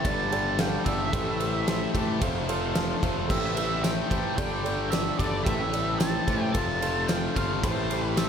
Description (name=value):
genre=classic rock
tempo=111 BPM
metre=4/4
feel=straight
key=A minor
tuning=A4 = 440 Hz
part: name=octave-fuzz lead guitar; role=melody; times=0.0-8.3 s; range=C5 to A5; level=-32 LUFS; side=right 3 dB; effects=wah, distortion, slapback echo
part: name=bright upright piano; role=accompaniment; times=0.0-8.3 s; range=F4 to F5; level=-34 LUFS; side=right 3 dB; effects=none
part: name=bright tonewheel organ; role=sustained chords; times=0.0-8.3 s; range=A3 to D5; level=-40 LUFS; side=equal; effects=none
part: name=overdriven electric guitar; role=riff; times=0.0-8.3 s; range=F2 to A3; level=-31 LUFS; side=left 10 dB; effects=none
part: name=tight distorted guitar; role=riff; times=0.0-8.3 s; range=F2 to G4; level=-35 LUFS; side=right 9 dB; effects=distortion, slapback echo
part: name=huge arena drum kit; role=drums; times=0.0-8.3 s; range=crash cymbal, kick drum, ride cymbal, snare drum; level=-29 LUFS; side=equal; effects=none
part: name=fuzz picked electric bass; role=bass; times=0.1-8.3 s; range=F1 to A2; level=-32 LUFS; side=equal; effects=overdrive
part: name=tambourine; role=percussion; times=3.8-8.3 s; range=none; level=-45 LUFS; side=right 14 dB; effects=none
room=moderate concert hall reverb, RT60 1.8 s, studio reverb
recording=big arena sound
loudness=-24 LUFS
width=side -7 dB against mid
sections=0.0-8.3 A section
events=none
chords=0.1 Gsus2; 1.1 Am7; 2.2 F; 3.3 Am7; 4.4 Gsus2; 5.5 Am7; 6.5 F; 7.6 Am7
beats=0.05 0.59 | 1.13 1.67 2.21 2.75 | 3.30 3.84 4.38 4.92 | 5.46 6.00 6.55 7.09 | 7.63 8.17